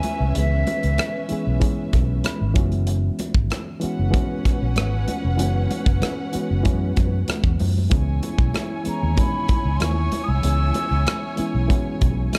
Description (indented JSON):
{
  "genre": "lush 1970s-style soul",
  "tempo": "95 BPM",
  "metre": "4/4",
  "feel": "straight",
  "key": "C# minor",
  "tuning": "A4 = 440 Hz",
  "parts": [
    { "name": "breathy mellow jazz flute", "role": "melody", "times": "0.0-1.6, 8.9-11.5 s", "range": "E5 to E6", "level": "-30 LUFS", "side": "equal", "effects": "none" },
    { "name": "warm studio string section", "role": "second line", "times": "0.0-12.4 s", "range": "C#4 to G#5", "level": "-34 LUFS", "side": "equal", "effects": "none" },
    { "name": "reed electric piano", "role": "accompaniment", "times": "0.0-12.4 s", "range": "D#3 to B5", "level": "-30 LUFS", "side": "equal", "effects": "none" },
    { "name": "modern studio drum kit", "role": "drums", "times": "0.0-12.4 s", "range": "hi-hat, kick drum, rim click", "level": "-25 LUFS", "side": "equal", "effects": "none" },
    { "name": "congas", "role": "percussion", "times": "0.0-12.4 s", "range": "none", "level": "-35 LUFS", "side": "equal", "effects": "none" },
    { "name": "fingered electric bass", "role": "bass", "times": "0.2-12.3 s", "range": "E#1 to F#2", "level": "-24 LUFS", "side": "equal", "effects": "none" }
  ],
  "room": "studio ambience",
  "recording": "none",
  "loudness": "-22 LUFS",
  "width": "mono",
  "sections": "0.0-12.4 A section",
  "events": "reed electric piano fill 1.9-2.9",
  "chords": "0.0 C#m7; 2.6 F#9sus4; 7.9 C#m7",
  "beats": "| 0.36 0.99 1.62 2.25 | 2.88 3.51 4.14 4.77 | 5.40 6.03 6.66 7.29 | 7.92 8.55 9.18 9.81 | 10.44 11.07 11.71 12.34"
}